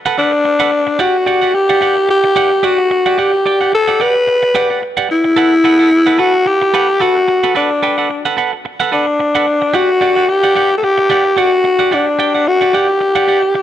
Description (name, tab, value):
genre	disco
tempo	110 BPM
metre	4/4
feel	swing 56% on 16ths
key	G major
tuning	A4 = 439 Hz
part	clean electric guitar	accompaniment	0.1-13.6 s	G4 to G5	-17 LUFS	right 6 dB	none
part	growling tenor saxophone	melody	0.2-13.6 s	D4 to B4	-11 LUFS	left 1 dB	none
room	light reverb, studio ambience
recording	dark, warm production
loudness	-11 LUFS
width	side -11 dB against mid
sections	0.0-13.6 A section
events	none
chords	0.0 Gmaj9 (rootless); 1.0 Em9 (rootless); 5.4 Gmaj9 (rootless); 9.7 Dadd11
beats	0.45 | 1.00 1.54 2.09 2.64 | 3.18 3.73 4.28 4.82 | 5.37 5.91 6.46 7.01 | 7.55 8.10 8.64 9.19 | 9.73 10.28 10.83 11.37 | 11.92 12.46 13.01 13.56